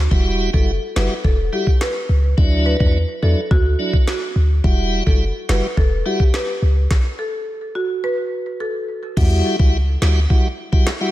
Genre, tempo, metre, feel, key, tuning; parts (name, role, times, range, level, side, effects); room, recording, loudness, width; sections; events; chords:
dancehall; 106 BPM; 4/4; straight; A4 = 439 Hz
clean 808-style bass; bass; 0.0-10.3 s; E1 to E2; -17 LUFS; equal
tonewheel organ; accompaniment; 0.1-11.1 s; F#3 to F#4; -23 LUFS; equal; overdrive, slow rotary speaker, sidechain pumping
island pop drum kit; drums; 0.1-11.0 s; crash cymbal, kick drum, snare drum; -18 LUFS; equal
marimba with medium mallets; melody; 0.5-9.0 s; F#4 to B4; -25 LUFS; equal; tape echo
light reverb; -16 LUFS; side -15 dB against mid
0.0-9.2 A section; 9.2-11.1 B section
stop 6.9-9.2
0.1 Emadd9; 2.4 Dadd9; 4.6 Emadd9; 6.9 N.C.; 9.2 Emadd9